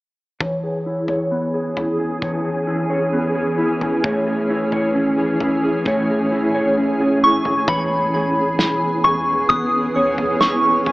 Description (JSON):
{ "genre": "dream pop", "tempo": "66 BPM", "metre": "4/4", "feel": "straight", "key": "E major", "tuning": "A4 = 440 Hz", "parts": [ { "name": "shimmering ambient pad", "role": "sustained chords", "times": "1.4-10.9 s", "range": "E2 to G#4", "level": "-22 LUFS", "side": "right 1 dB", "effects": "chorus, built-in reverb, low-pass filter" }, { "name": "mellow electric guitar", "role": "arpeggios", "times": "0.4-10.9 s", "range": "E3 to C#5", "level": "-20 LUFS", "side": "equal", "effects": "ensemble chorus, low-pass filter, digital delay" }, { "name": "loose indie drum kit", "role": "drums", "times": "0.4-10.9 s", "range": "kick drum, snare drum, toms", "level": "-23 LUFS", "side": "equal", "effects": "none" }, { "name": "soft synth bell", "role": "melody", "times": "7.2-10.9 s", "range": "B5 to D#6", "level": "-18 LUFS", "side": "equal", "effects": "chorus, phaser, digital delay" }, { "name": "chorused synth bass", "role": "bass", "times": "7.7-10.9 s", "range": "E1", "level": "-36 LUFS", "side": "equal", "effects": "none" } ], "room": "moderate plate reverb, RT60 2.8 s", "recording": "AM radio sound", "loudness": "-16 LUFS", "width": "side -19 dB against mid", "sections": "0.4-7.7 A section; 7.7-10.9 B section", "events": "filter sweep 0.4-7.7", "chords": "0.4 E6; 4.0 Amaj7; 7.7 E6" }